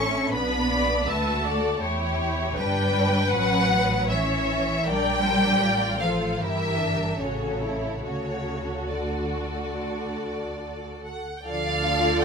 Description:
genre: classical, slow romantic movement for string orchestra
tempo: 69-81 BPM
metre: 4/4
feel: rubato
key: D major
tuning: A4 = 439 Hz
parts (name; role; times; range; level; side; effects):
- warm symphonic violin section; melody; 0.0-12.2 s; C#5 to C#6; -27 LUFS; left 1 dB; none
- warm symphonic violin section; second line; 0.0-12.2 s; B3 to D5; -29 LUFS; left 2 dB; none
- rich symphonic viola section; accompaniment; 0.0-12.2 s; F3 to E5; -31 LUFS; equal; none
- dark symphonic cello section; bass; 0.0-12.2 s; C#3 to C#4; -29 LUFS; right 2 dB; none
- warm symphonic double bass section; bass; 0.0-12.2 s; G1 to E2; -31 LUFS; right 1 dB; none
room: light reverb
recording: minimal, uncompressed stereo recording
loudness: -22 LUFS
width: side -5 dB against mid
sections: 0.0-11.5 A section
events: none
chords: 0.3 Bm; 1.8 Em7; 3.3 Aadd9; 4.9 Bb; 6.4 Em7b5/G; 7.2 A; 8.1 D; 11.5 Dm

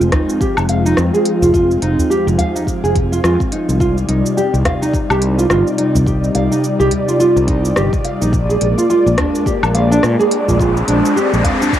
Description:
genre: organic downtempo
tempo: 106 BPM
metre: 4/4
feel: swing 59% on 16ths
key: F dorian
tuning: A4 = 439 Hz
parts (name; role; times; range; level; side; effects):
- warm analog pad; sustained chords; 0.0-11.8 s; C3 to D5; -19 LUFS; equal; chorus, sidechain pumping, cassette tape, shimmer reverb
- fretless electric bass; bass; 0.0-11.4 s; F1 to Bb2; -16 LUFS; equal; sidechain pumping
- deep house drum kit; drums; 0.0-11.8 s; hi-hat, rim click, shaker, woodblock; -22 LUFS; left 1 dB; cassette tape
- bronze singing bowl; texture; 0.0-11.8 s; none; barely audible; none; none
- nylon-string guitar; arpeggios; 0.1-11.7 s; D4 to F5; -16 LUFS; right 1 dB; low-pass filter, cassette tape, analog delay, shimmer reverb
- electronic kick drum; drums; 0.1-11.8 s; none; -20 LUFS; equal; cassette tape
- udu; percussion; 0.1-11.6 s; none; -22 LUFS; equal; none
- riser; sound effects; 9.3-11.8 s; none; -23 LUFS; left 1 dB; none
room: moderate spring reverb, RT60 1.9 s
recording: home recording on cassette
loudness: -12 LUFS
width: side -11 dB against mid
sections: 0.0-11.8 A section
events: riser 9.3-11.8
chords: 0.0 Fm7; 3.8 Cm; 8.3 Bb7

